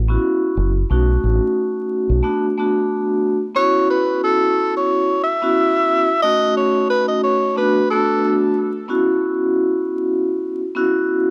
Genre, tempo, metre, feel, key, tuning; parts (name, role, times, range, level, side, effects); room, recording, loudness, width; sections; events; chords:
hip hop; 90 BPM; 4/4; swing 57% on 16ths; A4 = 440 Hz
deep dub fingered electric bass; bass; 0.0-2.2 s; F#1 to B1; -19 LUFS; equal
vibraphone with soft mallets; accompaniment; 0.1-11.3 s; A3 to F#4; -20 LUFS; equal; cassette tape, high-pass filter, low-pass filter
breathy tenor saxophone; melody; 3.6-8.4 s; A4 to E5; -20 LUFS; equal; high-pass filter, low-pass filter
small room ambience; dry, gritty hardware recording, transformer saturation, vinyl crackle; -18 LUFS; mono
0.0-3.6 A section; 3.6-11.3 B section
0.0 A69; 0.9 B7; 2.2 Bm7/A; 3.6 Bsus4; 6.2 B9/A (rootless); 7.6 Bm7/A; 8.9 Bsus24